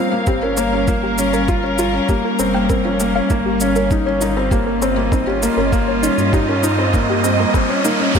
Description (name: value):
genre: piano and strings electronica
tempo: 99 BPM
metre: 4/4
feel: straight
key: unclear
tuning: A4 = 440 Hz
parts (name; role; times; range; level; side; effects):
- muted studio string section; sustained chords; 0.0-8.2 s; C3 to F5; -21 LUFS; equal; sidechain pumping, low-pass filter
- felt-muted upright piano; riff; 0.0-8.2 s; Bb3 to F4; -18 LUFS; left 1 dB; ping-pong delay
- soft round pluck; arpeggios; 0.3-8.2 s; Eb4 to G5; -24 LUFS; left 1 dB; chorus, cassette tape, sidechain pumping, ping-pong delay
- warm sub bass; bass; 0.3-8.2 s; F1 to G2; -25 LUFS; right 1 dB; sidechain pumping
- electronic kick drum; drums; 0.3-8.2 s; none; -18 LUFS; right 1 dB; none
- shaker; drums; 0.3-8.2 s; none; -29 LUFS; right 1 dB; overdrive
- riser; sound effects; 4.7-8.2 s; none; -25 LUFS; right 1 dB; none
room: moderate concert hall reverb, RT60 2.2 s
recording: none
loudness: -15 LUFS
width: side -6 dB against mid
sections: 0.0-8.2 A section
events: build-up 0.0-8.2; riser 4.7-8.2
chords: 0.0 Gm7b5; 3.3 Eb7/G